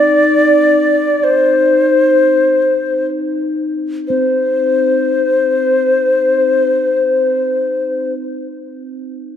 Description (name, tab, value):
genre	world meditative, free-time meditation music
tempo	free time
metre	none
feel	none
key	C hirajoshi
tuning	A4 = 439 Hz
part	mellow Native American-style cedar flute	melody	0.0-8.1 s	C5 to D5	-12 LUFS	left 2 dB	tape echo
part	bronze singing bowl	texture	0.0-8.1 s	C4 to Eb4	-19 LUFS	equal	none
room	wet echo chamber reverb, RT60 2.1 s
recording	echo-heavy mix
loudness	-11 LUFS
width	side -9 dB against mid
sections	0.0-4.1 A section; 4.1-7.7 B section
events	none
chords	none